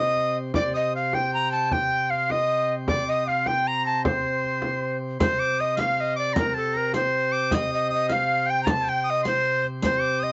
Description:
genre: medieval dance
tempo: 104 BPM (dotted quarters)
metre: 6/8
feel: straight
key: C dorian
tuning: A4 = 438 Hz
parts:
  - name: breathy bright tenor recorder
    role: melody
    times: 0.0-10.3 s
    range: A4 to Bb5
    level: -26 LUFS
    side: equal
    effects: cassette tape
  - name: edgy shawm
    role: second line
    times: 0.0-10.3 s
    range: F5 to Eb6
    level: -30 LUFS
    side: equal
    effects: cassette tape
  - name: pipe organ, plenum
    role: drone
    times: 0.0-10.3 s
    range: C3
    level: -34 LUFS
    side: equal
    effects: cassette tape
  - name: frame drum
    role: percussion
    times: 0.2-10.3 s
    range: none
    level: -30 LUFS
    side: equal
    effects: none
  - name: riq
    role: percussion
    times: 5.2-10.0 s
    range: none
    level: -36 LUFS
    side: equal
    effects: none
room: moderate studio ambience, RT60 0.5 s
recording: home recording on cassette, nothing above 7.7 kHz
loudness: -24 LUFS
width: mono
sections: 0.0-5.2 A section; 5.2-10.3 B section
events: none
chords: none

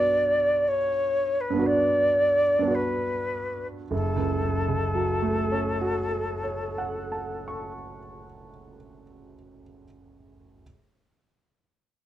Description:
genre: classical, impressionist duo for flute and grand piano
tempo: 49-64 BPM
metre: 4/4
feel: rubato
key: F# minor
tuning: A4 = 438 Hz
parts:
  - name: silver concert flute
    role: melody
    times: 0.0-7.7 s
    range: A4 to D5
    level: -24 LUFS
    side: equal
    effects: none
  - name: clear grand piano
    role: accompaniment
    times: 0.0-10.6 s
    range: F#1 to C#6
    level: -28 LUFS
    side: right 2 dB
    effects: none
room: light reverb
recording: dark, warm production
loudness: -23 LUFS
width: side -12 dB against mid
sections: 0.0-3.9 A section; 3.9-8.4 B section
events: slowing down 0.0-3.9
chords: 0.0 Gmaj7; 3.9 F#m

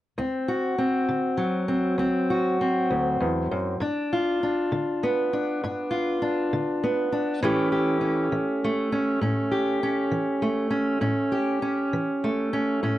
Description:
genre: acoustic country blues, solo or duo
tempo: 66 BPM (dotted quarters)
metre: 12/8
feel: straight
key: D major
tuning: A4 = 440 Hz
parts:
  - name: fingerpicked steel-string acoustic guitar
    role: solo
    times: 0.2-13.0 s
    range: D2 to G4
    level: -23 LUFS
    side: equal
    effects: none
room: moderate studio reverb, RT60 0.6 s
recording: worn, warbling old tape, cassette tape, warbly pitch drift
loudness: -23 LUFS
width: side -14 dB against mid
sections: 0.2-13.0 A section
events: none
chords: 0.2 D7; 3.8 G7; 7.4 A7

